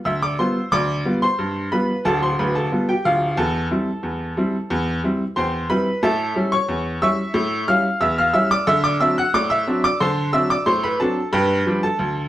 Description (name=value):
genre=ragtime piano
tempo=90 BPM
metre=2/4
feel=straight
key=C major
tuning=A4 = 436 Hz
part: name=bright upright piano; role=solo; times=0.1-12.3 s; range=D1 to F#6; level=-18 LUFS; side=equal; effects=none
room=wet small room reverb, RT60 0.6 s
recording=heard from further back in the room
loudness=-18 LUFS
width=side -13 dB against mid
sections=0.0-12.3 A section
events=none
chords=0.0 G7; 0.7 G7/D; 3.4 C/E; 6.0 A7; 8.7 D7; 11.3 G7